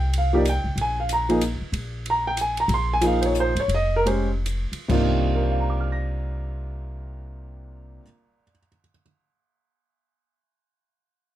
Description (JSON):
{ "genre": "modal jazz", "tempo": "131-187 BPM", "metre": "3/4", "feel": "swing 63% on 8ths", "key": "C minor", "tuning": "A4 = 442 Hz", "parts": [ { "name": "warm baby grand piano", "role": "accompaniment", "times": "0.0-9.0 s", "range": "C3 to Bb6", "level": "-23 LUFS", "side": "right 1 dB", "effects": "none" }, { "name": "upright bass", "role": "bass", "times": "0.0-8.0 s", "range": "F1 to C2", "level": "-26 LUFS", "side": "equal", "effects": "none" }, { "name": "open jazz drum kit", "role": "drums", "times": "0.1-5.0 s", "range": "crash cymbal, hi-hat, kick drum, ride cymbal, toms", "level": "-33 LUFS", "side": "right 1 dB", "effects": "none" } ], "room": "little or no reverb", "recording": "none", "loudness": "-21 LUFS", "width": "side -13 dB against mid", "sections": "0.0-4.9 A section; 4.9-7.6 B section", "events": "slowing down 2.7-4.9", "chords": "0.0 Cm11; 0.8 Bb9sus4; 4.9 Cm11", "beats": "0.13 0.45 | 0.77 1.09 1.41 | 1.73 2.05 2.37 | 2.69 3.02 3.35 | 3.69 4.06 4.46 | 4.89 5.35 5.81 | 6.26 6.72 7.18" }